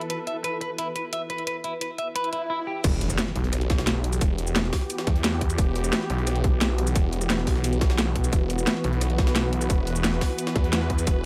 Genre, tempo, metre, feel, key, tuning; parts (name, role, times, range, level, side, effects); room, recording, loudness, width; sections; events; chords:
dark technical drum and bass; 175 BPM; 4/4; straight; E minor; A4 = 440 Hz
sweeping resonant pad; sustained chords; 0.0-11.3 s; E3 to B4; -33 LUFS; equal; chorus, sidechain pumping
drum and bass drum kit; drums; 0.0-11.1 s; cabasa, crash cymbal, hi-hat, rim click, snare drum; -30 LUFS; equal; overdrive
granular cloud pad; texture; 0.0-2.5 s; E4 to B4; -41 LUFS; equal; built-in reverb, sidechain pumping
clean electric guitar; arpeggios; 0.1-2.8 s; E4 to E5; -31 LUFS; equal; sidechain pumping, delay
swell and impact; sound effects; 2.2-4.2 s; -35 LUFS; equal
snarling distorted saw bass; bass; 2.8-11.3 s; E1 to E2; -28 LUFS; equal; tube saturation
electronic kick drum; drums; 2.8-11.1 s; -26 LUFS; equal; overdrive
jungle sampler-style drum kit; drums; 2.8-11.2 s; hi-hat, snare drum; -39 LUFS; equal
little or no reverb; -25 LUFS; mono
0.0-2.8 A section; 2.8-11.3 B section
swell 2.2-2.8; drop 2.8-11.3; impact 2.8-4.2
0.0 E5; 2.8 Em